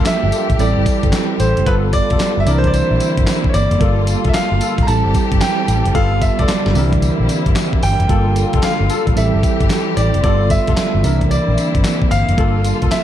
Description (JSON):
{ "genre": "R&B, new jack swing", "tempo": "112 BPM", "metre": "4/4", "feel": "swing 64% on 16ths", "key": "G dorian", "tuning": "A4 = 440 Hz", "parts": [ { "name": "clear grand piano", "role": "melody", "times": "0.0-13.0 s", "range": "B4 to Bb5", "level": "-21 LUFS", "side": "equal", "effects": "none" }, { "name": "bell-like tine electric piano", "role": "accompaniment", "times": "0.0-13.0 s", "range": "E3 to Bb4", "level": "-21 LUFS", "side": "right 5 dB", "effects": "fast stereo tremolo" }, { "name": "warm studio string section", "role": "sustained chords", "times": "0.0-13.0 s", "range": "D3 to A4", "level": "-23 LUFS", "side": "left 2 dB", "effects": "none" }, { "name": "mellow horn section", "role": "stabs", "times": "0.0-12.9 s", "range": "Bb3 to Bb4", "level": "-27 LUFS", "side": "left 8 dB", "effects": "digital delay" }, { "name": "vintage muted fingered electric bass", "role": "bass", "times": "0.0-12.9 s", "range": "F1 to C2", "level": "-17 LUFS", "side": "equal", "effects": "none" }, { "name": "clean 12-bit digital drum machine", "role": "drums", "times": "0.1-13.0 s", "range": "handclaps, hi-hat, kick drum, snare drum, tambourine", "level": "-19 LUFS", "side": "equal", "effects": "none" } ], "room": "light reverb, digital ambience", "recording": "dark, warm production", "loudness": "-13 LUFS", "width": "side -11 dB against mid", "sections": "0.0-13.0 A section", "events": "none", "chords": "0.0 Gm9; 0.6 Am7; 1.7 G9; 2.5 C9; 3.8 Gm9; 4.9 Am7; 6.0 G9; 6.8 C9; 8.1 Gm9; 9.2 Am7; 10.2 G9; 11.0 C9; 12.4 Gm9", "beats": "0.06 0.59 1.13 | 1.67 2.20 2.74 3.27 | 3.81 4.34 4.88 5.42 | 5.95 6.49 7.02 7.56 | 8.09 8.63 9.16 9.70 | 10.24 10.77 11.31 11.84 | 12.38 12.91" }